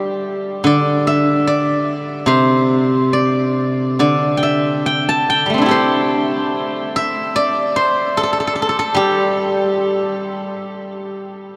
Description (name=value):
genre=chinese traditional, Chinese solo plucked strings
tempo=66-77 BPM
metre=2/4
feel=rubato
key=G zhi mode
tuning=A4 = 440 Hz
part: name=steel-string zither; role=solo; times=0.0-11.5 s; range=C3 to A5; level=-17 LUFS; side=equal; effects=none
room=wet huge ambient reverb, RT60 7.9 s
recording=in a vast, echoing space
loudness=-17 LUFS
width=mono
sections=0.0-10.7 A section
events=none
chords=none